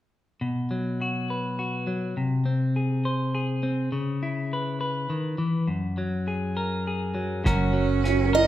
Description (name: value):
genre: acoustic folk-pop ballad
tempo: 102 BPM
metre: 3/4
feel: straight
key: unclear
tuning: A4 = 440 Hz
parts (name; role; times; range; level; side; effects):
- clean electric guitar; accompaniment; 0.4-8.5 s; F#2 to B#4; -25 LUFS; left 1 dB; none
- rich cello; second line; 7.5-8.5 s; C#4; -26 LUFS; right 9 dB; none
- mellow fretless electric bass; bass; 7.5-8.5 s; F#1; -26 LUFS; right 1 dB; none
- cloth-damped thuddy drum kit; drums; 7.5-8.2 s; hi-hat, kick drum; -27 LUFS; right 1 dB; none
- felt-muted upright piano; arpeggios; 8.1-8.5 s; E4 to A#4; -26 LUFS; right 7 dB; none
- picked steel-string acoustic guitar; melody; 8.3-8.5 s; D#5; -18 LUFS; right 2 dB; none
room: wet recital hall reverb, RT60 1.3 s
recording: recorded in a church or concert hall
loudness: -24 LUFS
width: side -12 dB against mid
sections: 0.4-7.5 A section; 7.5-8.5 B section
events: none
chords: 0.4 B5; 2.2 G#/B#; 3.9 C#m7; 5.7 F#add9; 7.5 F#